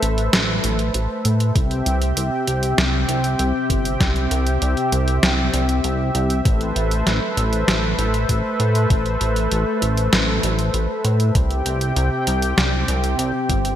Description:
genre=synthwave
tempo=98 BPM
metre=4/4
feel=straight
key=A minor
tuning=A4 = 439 Hz
part: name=warm analog pad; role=sustained chords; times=0.0-13.8 s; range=C3 to G5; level=-22 LUFS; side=equal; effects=chorus, sidechain pumping
part: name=chorused synth bass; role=bass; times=0.0-13.8 s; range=G1 to A2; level=-20 LUFS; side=equal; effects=none
part: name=detuned 8-bit digital drum machine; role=drums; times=0.0-13.8 s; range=hi-hat, snare drum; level=-22 LUFS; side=equal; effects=gated reverb
part: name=electronic kick drum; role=drums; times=1.6-13.6 s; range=none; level=-19 LUFS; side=equal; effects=none
room=moderate lush hall reverb, RT60 2.2 s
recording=bright 1980s-style digital production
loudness=-17 LUFS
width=side -11 dB against mid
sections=0.0-13.8 A section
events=none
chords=0.0 Amadd9; 1.6 C; 6.5 Amadd9; 11.4 C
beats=0.33 0.94 | 1.55 2.17 2.78 3.39 | 4.00 4.62 5.23 5.84 | 6.45 7.07 7.68 8.29 | 8.90 9.51 10.13 10.74 | 11.35 11.96 12.58 13.19

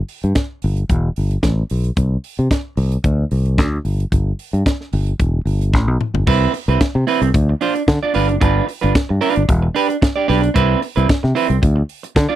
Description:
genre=disco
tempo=112 BPM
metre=4/4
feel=straight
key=C major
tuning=A4 = 439 Hz
part: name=tight funk drum kit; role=drums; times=0.1-12.3 s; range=crash cymbal, hi-hat, kick drum, snare drum, toms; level=-18 LUFS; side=equal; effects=none
part: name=fingered electric bass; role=bass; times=0.2-12.3 s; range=E1 to D3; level=-16 LUFS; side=equal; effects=none
part: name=clean electric guitar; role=accompaniment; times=6.3-12.4 s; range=C4 to D5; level=-17 LUFS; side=right 6 dB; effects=none
room=little or no reverb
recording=dry, close 1970s-style studio recording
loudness=-15 LUFS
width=side -13 dB against mid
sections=0.0-6.3 A section; 6.3-12.4 B section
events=drum fill 5.7-6.3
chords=0.0 N.C.; 0.9 Em; 2.0 N.C.; 3.1 Csus2; 3.9 N.C.; 5.2 Em; 6.3 Cmaj7; 7.3 Dm7; 8.1 G7; 9.5 Em7; 10.6 Cmaj7; 11.6 Dm7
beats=0.36 0.90 1.44 | 1.98 2.52 3.05 3.59 | 4.13 4.67 5.20 5.74 | 6.28 6.81 7.35 7.88 | 8.42 8.95 9.48 10.02 | 10.55 11.09 11.62 12.16

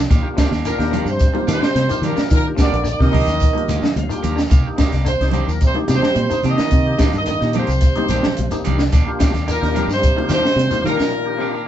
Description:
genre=afrobeat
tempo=109 BPM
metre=4/4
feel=straight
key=unclear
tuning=A4 = 443 Hz
part: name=electric guitar through a small old amp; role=arpeggios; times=0.0-11.6 s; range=C3 to Eb3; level=-29 LUFS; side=left 4 dB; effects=none
part: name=fingered electric bass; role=bass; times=0.0-11.0 s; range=Bb1 to Eb3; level=-21 LUFS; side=equal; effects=none
part: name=electric guitar at the edge of break-up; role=stabs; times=0.1-11.7 s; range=Eb3 to G4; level=-29 LUFS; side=right 3 dB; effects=none
part: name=compact cocktail drum kit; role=drums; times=0.1-11.1 s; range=hi-hat, kick drum, snare drum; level=-18 LUFS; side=equal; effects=none
part: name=congas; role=percussion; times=0.1-11.0 s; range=none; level=-27 LUFS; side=right 2 dB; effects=none
part: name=shekere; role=percussion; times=0.1-11.1 s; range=none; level=-30 LUFS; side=left 2 dB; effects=none
part: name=percussive tonewheel organ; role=accompaniment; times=0.2-11.6 s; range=Bb3 to Bb5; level=-28 LUFS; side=equal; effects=slow rotary speaker, overdrive, chorus vibrato
part: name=warm horn section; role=melody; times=0.7-11.6 s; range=Bb4 to Eb5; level=-22 LUFS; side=equal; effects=none
part: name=breathy trombone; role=second line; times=0.7-11.6 s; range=Eb3 to Bb3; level=-33 LUFS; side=right 4 dB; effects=none
part: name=clear bass trombone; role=second line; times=0.7-11.6 s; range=Bb2 to Eb3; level=-28 LUFS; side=right 1 dB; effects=none
room=moderate small room reverb, RT60 0.5 s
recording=band playing live in one room, nothing above 7.9 kHz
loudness=-15 LUFS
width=side -11 dB against mid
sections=0.0-11.7 A section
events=tonewheel organ fill 3.4-4.5; break 11.1-11.7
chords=0.1 Ebmaj7; 4.5 Cm9; 8.9 Ebmaj7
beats=| 0.11 0.66 1.21 1.76 | 2.31 2.86 3.41 3.96 | 4.51 5.07 5.62 6.17 | 6.72 7.27 7.82 8.37 | 8.92 9.47 10.02 10.57 | 11.12 11.67

